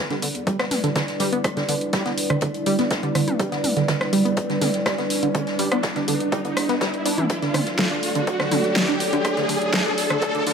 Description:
melodic techno; 123 BPM; 4/4; straight; E minor; A4 = 440 Hz
dark analog pad; sustained chords; 0.2-10.5 s; F#3 to D5; -26 LUFS; right 1 dB; chorus, phaser, sidechain pumping
riser; sound effects; 0.0-10.5 s; -29 LUFS; equal
tight sequenced synth; arpeggios; 0.1-10.5 s; D3 to D4; -24 LUFS; right 2 dB; chorus, phaser, sidechain pumping, tape echo
deep house drum kit; drums; 0.1-10.5 s; hi-hat, rim click, snare drum, toms; -25 LUFS; equal; overdrive, sidechain pumping on hats, sidechain pumping on toms
swinging big-band drum kit; drums; 0.1-10.5 s; hi-hat, snare drum; -32 LUFS; left 2 dB; sidechain pumping on hats, high-pass filter on hats, high-pass filter on snare, high-pass filter on room
round analog bass; bass; 0.2-10.5 s; barely audible
electronic kick drum; drums; 0.5-10.3 s; -27 LUFS; equal; overdrive, high-pass filter on kick
moderate lush hall reverb, RT60 1.8 s; high-pass filter; -20 LUFS; side -6 dB against mid
0.0-10.5 A section
build-up 0.0-10.5; riser 0.0-10.5
0.0 Em7; 7.3 D
0.47 0.96 | 1.45 1.93 2.42 2.91 | 3.40 3.88 4.37 4.86 | 5.35 5.83 6.32 6.81 | 7.30 7.79 8.27 8.76 | 9.25 9.74 10.22

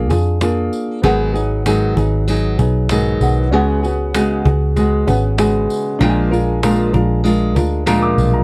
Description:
acoustic pop; 97 BPM; 4/4; straight; A4 = 444 Hz
flamenco guitar; accompaniment; 0.0-8.4 s; Ab2 to Bb4; -19 LUFS; equal
vintage muted fingered electric bass; bass; 0.0-8.4 s; Ab1 to F2; -20 LUFS; equal
cajon; drums; 0.1-8.4 s; -23 LUFS; equal
tambourine; percussion; 0.1-8.3 s; -39 LUFS; equal
warm upright piano; accompaniment; 1.0-8.4 s; Cb4 to D6; -26 LUFS; equal
little or no reverb; dry, close 1970s-style studio recording; -16 LUFS; mono
0.0-8.4 A section
0.0 Bb7; 1.0 Abm7; 3.5 Db7sus4; 6.0 Bb7
0.42 | 1.04 1.66 2.28 2.90 | 3.52 4.15 4.77 5.39 | 6.01 6.63 7.25 7.87

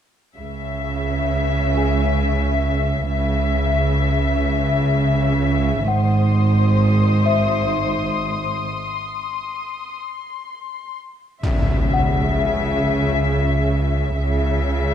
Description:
cinematic, suspense film score; 65 BPM; 3/4; straight; C# harmonic minor; A4 = 441 Hz
muted studio violin section; melody; 0.4-14.9 s; B#4 to E5; -24 LUFS; left 5 dB
muted studio cello section; bass; 0.4-14.9 s; G#2 to C#3; -22 LUFS; right 2 dB
muted studio double bass section; bass; 0.4-14.9 s; G#1 to C#2; -21 LUFS; right 2 dB
worn celesta; texture; 1.8-14.9 s; G#4 to G#5; -27 LUFS; left 6 dB
muted studio violin section; texture; 5.9-10.9 s; B#5 to D#6; -27 LUFS; left 6 dB
impact; sound effects; 11.4-14.2 s; -23 LUFS; left 1 dB
moderate scoring stage reverb, RT60 1.5 s; -17 LUFS; side -9 dB against mid
0.4-11.4 A section; 11.4-14.9 B section
break 8.6-11.4; impact 11.4-14.2
0.4 C#m; 5.9 G#; 11.4 C#m
| 0.37 1.30 2.22 | 3.13 4.05 4.97 | 5.88 6.79 7.70 | 8.62 9.54 10.48 | 11.43 12.36 13.27 | 14.18

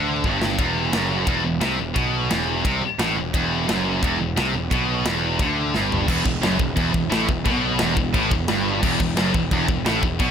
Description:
heavy metal; 175 BPM; 4/4; straight; E minor; A4 = 440 Hz
heavy high-gain guitar; riff; 0.0-10.3 s; E2 to D3; -24 LUFS; left 12 dB; distortion
high-gain distorted guitar; riff; 0.0-10.3 s; E2 to D3; -25 LUFS; right 13 dB; distortion
fuzz picked electric bass; bass; 0.0-10.3 s; E1 to D2; -27 LUFS; equal; overdrive
tight metal drum kit; drums; 0.2-10.3 s; china cymbal, crash cymbal, kick drum, ride cymbal, snare drum, toms; -25 LUFS; equal
thick fuzz guitar; riff; 6.1-10.3 s; E2 to B2; -26 LUFS; right 1 dB; distortion
small room ambience; -19 LUFS; side -8 dB against mid
0.0-6.1 A section; 6.1-10.3 B section
drum fill 0.2-0.6, 5.7-6.1
0.0 Em
0.25 | 0.59 0.93 1.28 1.62 | 1.96 2.31 2.65 2.99 | 3.34 3.68 4.03 4.37 | 4.71 5.05 5.40 5.74 | 6.09 6.43 6.77 7.12 | 7.46 7.80 8.14 8.49 | 8.83 9.17 9.52 9.86 | 10.21

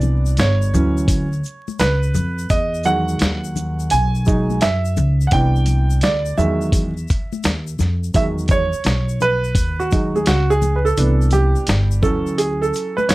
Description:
hip hop, jazz-hop; 85 BPM; 4/4; swing 66% on 16ths; E major; A4 = 440 Hz
warm grand piano; accompaniment; 0.0-13.1 s; D#3 to G#5; -20 LUFS; right 2 dB
upright bass; bass; 0.0-13.1 s; G1 to F#2; -18 LUFS; equal
dusty soul sampler-style drum kit; drums; 0.0-13.1 s; hi-hat, kick drum, shaker, snare drum; -19 LUFS; equal
congas and tube shaker; percussion; 0.0-13.1 s; -30 LUFS; left 6 dB
light reverb; vinyl crackle; -16 LUFS; side -19 dB against mid
0.0-8.1 A section; 8.1-13.1 B section
grand piano solo 0.0-8.1, 8.1-13.1
0.0 Cmaj9; 0.7 Dmaj9; 2.5 Emaj9; 5.3 Cmaj9; 6.4 Emaj9; 11.0 Cmaj9; 12.0 Dmaj9
0.38 1.09 1.79 | 2.50 3.21 3.91 4.62 | 5.32 6.03 6.73 7.44 | 8.15 8.85 9.56 10.26 | 10.97 11.68 12.38 13.09

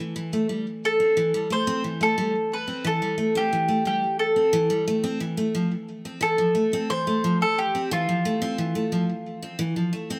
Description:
folktronica; 89 BPM; 4/4; straight; F lydian; A4 = 440 Hz
picked steel-string acoustic guitar; arpeggios; 0.0-10.2 s; E3 to C4; -28 LUFS; equal; delay
mandolin; melody; 0.9-10.2 s; F4 to C5; -26 LUFS; equal; delay
moderate echo chamber reverb, RT60 1.4 s; -24 LUFS; mono
0.0-10.2 A section
0.2 C6; 5.5 Fmaj7
| 0.15 0.83 1.50 2.18 | 2.85 3.53 4.20 4.87 | 5.55 6.22 6.90 7.57 | 8.24 8.92 9.59

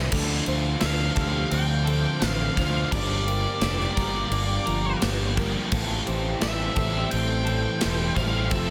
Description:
rock, shoegaze and dream pop; 86 BPM; 4/4; straight; D minor; A4 = 440 Hz
picked twelve-string acoustic guitar; arpeggios; 0.0-8.7 s; G4 to C5; -40 LUFS; equal; subtle chorus, analog delay
crunchy overdriven guitar; riff; 0.0-8.7 s; G2 to G4; -35 LUFS; equal; subtle chorus
semi-hollow electric guitar; riff; 0.0-8.7 s; G2 to Bb4; -38 LUFS; equal; reverse reverb
growling fingered electric bass; bass; 0.0-8.7 s; E1 to D2; -30 LUFS; equal; overdrive
deep dark ambient pad; sustained chords; 1.1-8.7 s; G4 to D6; -40 LUFS; equal; chorus, built-in reverb
overdriven semi-hollow guitar; riff; 0.1-8.7 s; G2 to A4; -35 LUFS; equal
gated 80s drum kit; drums; 0.1-8.7 s; crash cymbal, kick drum, snare drum; -30 LUFS; equal
octave-fuzz lead guitar; melody; 0.8-8.7 s; D5 to G5; -33 LUFS; equal; distortion, analog delay
tambourine; percussion; 0.8-8.0 s; -43 LUFS; equal
light reverb, small room ambience; dense, heavily limited modern master; -25 LUFS; mono
0.1-8.7 A section
0.1 Dm7; 2.9 Gm7; 5.7 Am7
| 0.13 0.83 1.53 2.23 | 2.93 3.62 4.32 5.02 | 5.72 6.42 7.12 7.81 | 8.51

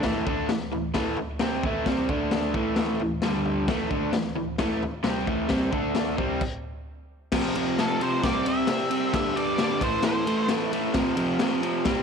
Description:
garage rock duo or trio; 132 BPM; 4/4; straight; A minor; A4 = 439 Hz
overdriven electric guitar; riff; 0.0-12.0 s; F2 to D4; -25 LUFS; right 1 dB
raw garage drum kit; drums; 0.0-12.0 s; crash cymbal, kick drum, ride cymbal, snare drum, toms; -28 LUFS; left 3 dB
octave-fuzz lead guitar; melody; 7.8-10.5 s; A4 to E5; -29 LUFS; right 1 dB; distortion
moderate echo chamber reverb, RT60 1.9 s, small room ambience; 1960s-style stereo; -23 LUFS; side -6 dB against mid
0.0-7.3 A section; 7.3-12.0 B section
stop 6.4-7.3
0.0 Am; 2.1 D5; 2.5 A5; 3.2 G5; 3.7 Am; 5.7 D5; 6.2 C5; 6.7 N.C.; 7.3 F5; 8.2 C; 9.1 G5; 9.8 Am; 11.0 F5
| 0.04 0.49 0.95 1.41 | 1.86 2.32 2.78 3.23 | 3.69 4.15 4.60 5.06 | 5.51 5.97 6.42 6.88 | 7.33 7.78 8.24 8.69 | 9.14 9.60 10.05 10.50 | 10.95 11.40 11.86

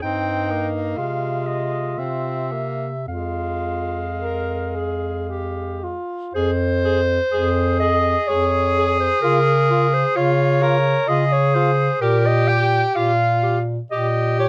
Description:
classical, lyrical piece for single-reed quartet; 53-65 BPM; 3/4; rubato; F minor; A4 = 440 Hz
clear clarinet; melody; 0.0-14.5 s; Bb4 to G5; -24 LUFS; equal
clear alto saxophone; second line; 0.0-14.5 s; Eb4 to Bb4; -28 LUFS; equal
clear tenor saxophone; accompaniment; 0.0-14.5 s; Ab3 to Bb4; -26 LUFS; equal
mellow bass clarinet; bass; 0.0-14.5 s; F2 to Db3; -25 LUFS; equal
light reverb; worn, warbling old tape, cassette tape, warbly pitch drift; -20 LUFS; mono
0.0-6.3 A section; 6.3-14.5 B section
0.0 Eb6/G; 1.0 Fm/C; 2.0 C7; 3.1 Fm; 9.2 Db; 12.0 Bb5
| 0.03 0.98 1.98 | 3.07 4.20 5.29 | 6.33 7.31 8.27 | 9.21 10.15 11.08 | 12.01 12.95 13.91

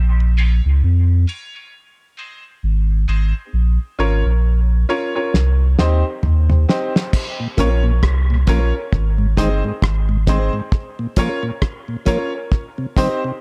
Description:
dub reggae; 67 BPM; 4/4; swing 59% on 16ths; Bb dorian; A4 = 440 Hz
warm sub bass; bass; 0.0-10.5 s; G1 to F2; -17 LUFS; equal
mellow tonewheel organ; accompaniment; 0.2-0.3, 7.4-13.3 s; Ab2 to Db4; -26 LUFS; equal; slow rotary speaker, high-pass filter
electric guitar through a small old amp; accompaniment; 0.4-0.5 s; F3 to F4; -34 LUFS; equal; analog chorus, high-pass filter, dub echo
clear upright piano; stabs; 0.4-13.3 s; C4 to Db5; -26 LUFS; equal; high-pass filter, dub echo
cloth-damped thuddy drum kit; drums; 5.3-13.2 s; crash cymbal, hi-hat, kick drum, rim click, snare drum, toms; -20 LUFS; equal
light reverb; -18 LUFS; mono
0.0-7.1 A section; 7.1-13.4 B section
break 0.0-7.1, 10.7-13.4; drum fill 5.3-7.1
0.0 Bbm; 1.7 Ab; 3.5 Bbm; 5.3 Cm; 7.1 Bbm; 8.9 Ab; 10.7 Bbm; 12.5 Cm
0.83 1.73 2.63 | 3.53 4.43 5.33 6.23 | 7.13 8.03 8.92 9.82 | 10.72 11.62 12.52

